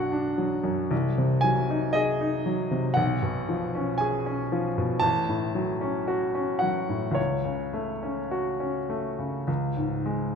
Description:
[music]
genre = classical, romantic nocturne for solo piano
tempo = 51-59 BPM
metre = 4/4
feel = rubato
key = F# minor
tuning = A4 = 441 Hz
[part]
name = clear baby grand piano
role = solo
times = 0.0-10.4 s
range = A1 to A5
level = -24 LUFS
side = equal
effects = none
[sound]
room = moderate concert hall reverb, RT60 1.9 s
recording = minimal, uncompressed stereo recording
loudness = -24 LUFS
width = side -6 dB against mid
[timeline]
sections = 0.0-10.4 A section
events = none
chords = 0.0 Bm; 0.9 G#7/B#; 3.0 C#7/B; 5.0 F#m/A; 7.2 F#m/C#; 9.5 C#5

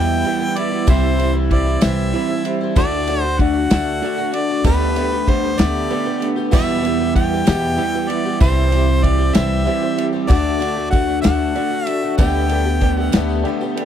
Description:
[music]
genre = folk rock and heartland rock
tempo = 64 BPM (dotted quarters)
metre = 6/8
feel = straight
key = G major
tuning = A4 = 442 Hz
[part]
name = clear harmonica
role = melody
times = 0.0-13.4 s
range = B4 to G5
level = -23 LUFS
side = equal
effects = none
[part]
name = picked twelve-string acoustic guitar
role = accompaniment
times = 0.0-13.8 s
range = E2 to G4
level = -26 LUFS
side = left 6 dB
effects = none
[part]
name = electric guitar through a small old amp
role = riff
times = 0.0-13.8 s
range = E2 to G4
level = -21 LUFS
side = right 1 dB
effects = wide subtle chorus
[part]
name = upright bass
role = bass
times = 0.0-13.4 s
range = C2 to E2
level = -20 LUFS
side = equal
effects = none
[part]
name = natural country drum kit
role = drums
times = 0.2-13.8 s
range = crash cymbal, kick drum, ride cymbal, snare drum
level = -17 LUFS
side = equal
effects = none
[part]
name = reed electric piano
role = accompaniment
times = 0.3-13.8 s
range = D4 to B5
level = -28 LUFS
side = right 6 dB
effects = tremolo
[part]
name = tambourine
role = percussion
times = 0.9-13.7 s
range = none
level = -39 LUFS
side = right 13 dB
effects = none
[sound]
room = little or no reverb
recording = dry, close 1970s-style studio recording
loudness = -15 LUFS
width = side -9 dB against mid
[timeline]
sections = 0.0-13.8 A section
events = none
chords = 0.0 Em; 0.9 C; 2.8 D; 4.6 Gadd9/D; 6.5 Em; 8.4 C; 10.3 D; 12.2 Gadd9/D

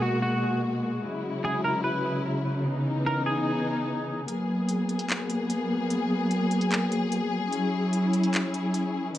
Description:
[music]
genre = hip hop, atmospheric cloud-rap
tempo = 148 BPM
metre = 4/4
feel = half-time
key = G# minor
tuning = A4 = 440 Hz
[part]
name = clean electric guitar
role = melody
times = 0.0-4.2 s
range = F#4 to B4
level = -31 LUFS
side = right 1 dB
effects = analog chorus, low-pass filter, tape echo
[part]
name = dark studio string section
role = sustained chords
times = 0.0-9.2 s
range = B2 to B4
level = -25 LUFS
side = left 1 dB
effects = none
[part]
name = downlifter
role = sound effects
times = 0.0-1.0 s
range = none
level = barely audible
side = none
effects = none
[part]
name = smooth R&B drum kit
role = drums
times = 4.3-9.2 s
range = handclaps, hi-hat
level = -31 LUFS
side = equal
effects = vintage 12-bit sampler grit
[sound]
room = digital ambience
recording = dark, warm production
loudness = -25 LUFS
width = side -13 dB against mid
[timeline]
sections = 0.0-4.3 A section; 4.3-9.2 B section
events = kick muted 4.3-9.2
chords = 0.0 G#m9; 1.0 E69; 2.7 C#m9; 4.3 G#m9; 7.5 E69

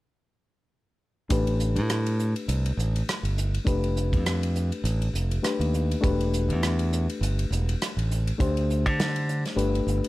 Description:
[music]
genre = electric jazz fusion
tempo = 102 BPM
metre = 4/4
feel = swing 56% on 16ths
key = A minor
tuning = A4 = 440 Hz
[part]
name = reed electric piano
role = accompaniment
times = 1.3-10.1 s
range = A3 to C5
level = -30 LUFS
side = left 3 dB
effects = none
[part]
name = modern bright fingered electric bass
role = bass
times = 1.3-10.0 s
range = E1 to D3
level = -25 LUFS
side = equal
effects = none
[part]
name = modern studio drum kit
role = drums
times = 1.3-10.1 s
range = hi-hat, kick drum, ride cymbal, rim click, snare drum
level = -31 LUFS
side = right 1 dB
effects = none
[sound]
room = small room reverb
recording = none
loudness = -23 LUFS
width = side -18 dB against mid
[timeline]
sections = 1.3-10.1 A section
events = none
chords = 1.3 A7sus2; 3.7 F13; 6.0 Em7; 8.4 D5; 9.6 Gadd9

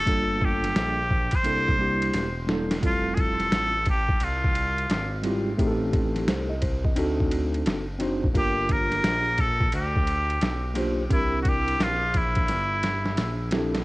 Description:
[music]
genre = hip hop, jazz-hop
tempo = 87 BPM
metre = 4/4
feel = swing 64% on 16ths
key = F major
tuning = A4 = 441 Hz
[part]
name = trumpet with straight mute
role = melody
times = 0.0-13.5 s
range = E4 to C5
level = -26 LUFS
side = equal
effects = cassette tape, analog delay
[part]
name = smooth gliding synth bass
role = bass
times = 0.0-13.8 s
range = E1 to D2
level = -30 LUFS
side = equal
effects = none
[part]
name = mellow tine electric piano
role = accompaniment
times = 0.1-13.8 s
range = G3 to Eb5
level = -28 LUFS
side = equal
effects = medium stereo tremolo
[part]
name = boom bap sampler-style drum kit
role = drums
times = 0.1-13.8 s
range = hi-hat, kick drum, ride cymbal, snare drum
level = -27 LUFS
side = equal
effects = cassette tape
[sound]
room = light reverb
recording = home recording on cassette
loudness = -22 LUFS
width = side -21 dB against mid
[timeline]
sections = 0.0-2.8 A section; 2.8-13.8 B section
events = drum fill 2.1-2.8, 12.5-13.8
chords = 0.1 Gm9; 1.5 C13; 2.8 Fmaj7; 5.6 Am7b5; 7.0 D7b9; 8.3 Gm7; 11.1 C9

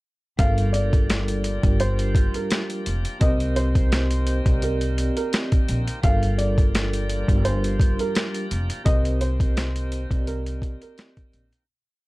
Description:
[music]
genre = hip hop, boom-bap hip-hop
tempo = 85 BPM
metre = 4/4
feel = swing 54% on 16ths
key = G minor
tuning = A4 = 435 Hz
[part]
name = dark upright piano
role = melody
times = 0.4-11.0 s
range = Bb4 to F5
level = -30 LUFS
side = right 1 dB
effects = high-pass filter, low-pass filter, digital delay
[part]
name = vibraphone with soft mallets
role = accompaniment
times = 0.4-11.4 s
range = G3 to Eb5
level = -29 LUFS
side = equal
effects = high-pass filter, low-pass filter
[part]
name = bright tonewheel organ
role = sustained chords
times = 0.4-11.7 s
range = Eb3 to G4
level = -38 LUFS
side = left 1 dB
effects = overdrive, slow rotary speaker, high-pass filter, low-pass filter
[part]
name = upright bass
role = bass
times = 0.4-11.5 s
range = F1 to C2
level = -24 LUFS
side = equal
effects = none
[part]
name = boom bap sampler-style drum kit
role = drums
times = 0.4-11.7 s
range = hi-hat, kick drum, snare drum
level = -22 LUFS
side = equal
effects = none
[sound]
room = little or no reverb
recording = dark, warm production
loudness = -20 LUFS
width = side -21 dB against mid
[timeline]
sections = 0.4-11.7 hook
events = fade-out 8.9-11.7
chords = 0.4 Gm7; 3.2 Cm7; 6.0 Gm7; 8.9 Cm7

